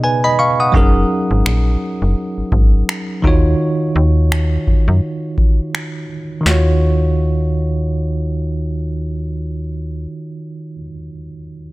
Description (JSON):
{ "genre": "contemporary R&B", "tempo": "84 BPM", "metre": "4/4", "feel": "swing 58% on 16ths", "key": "Eb minor", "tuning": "A4 = 439 Hz", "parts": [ { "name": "bell-like tine electric piano", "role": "accompaniment", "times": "0.0-11.7 s", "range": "B2 to D#6", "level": "-18 LUFS", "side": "right 1 dB", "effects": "medium stereo tremolo, low-pass filter" }, { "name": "hollow soft pad", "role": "sustained chords", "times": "0.0-0.7 s", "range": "none", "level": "barely audible", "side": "none", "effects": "none" }, { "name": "slap-like FM bass", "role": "bass", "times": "0.7-10.1 s", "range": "Gb1 to Gb2", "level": "-16 LUFS", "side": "equal", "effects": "none" }, { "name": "booming analog drum machine", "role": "drums", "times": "0.7-6.6 s", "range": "finger snaps, kick drum, snare drum", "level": "-16 LUFS", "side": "equal", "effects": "none" } ], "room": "little or no reverb", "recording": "none", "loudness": "-14 LUFS", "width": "side -19 dB against mid", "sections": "0.7-6.5 A section; 6.5-9.3 B section", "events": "break 0.0-0.7; filter sweep on tine electric piano 0.7-6.5", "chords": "0.0 B69; 0.7 Gb69; 3.2 Ebm7", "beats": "0.02 | 0.74 1.45 2.17 2.88 | 3.60 4.31 5.02 5.74 | 6.45 7.17 7.88 8.60" }